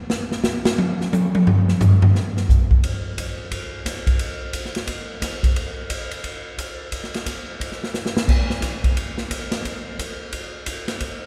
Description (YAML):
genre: jazz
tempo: 176 BPM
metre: 4/4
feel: swing 63% on 8ths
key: none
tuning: none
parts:
  - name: swinging big-band drum kit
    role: drums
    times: 0.1-11.1 s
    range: crash cymbal, hi-hat, kick drum, ride cymbal, snare drum, toms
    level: -22 LUFS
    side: equal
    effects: none
room: wet cathedral reverb, RT60 4.2 s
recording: recorded in a church or concert hall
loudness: -22 LUFS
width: mono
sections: 0.0-2.8 A section; 2.8-11.3 B section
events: drum solo 0.0-2.8; drum fill 7.9-8.3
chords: none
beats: | 0.10 0.44 0.78 1.12 | 1.46 1.80 2.14 2.48 | 2.83 3.17 3.51 3.85 | 4.19 4.53 4.87 5.21 | 5.56 5.90 6.24 6.58 | 6.92 7.26 7.60 7.94 | 8.28 8.62 8.96 9.30 | 9.64 9.98 10.32 10.66 | 11.01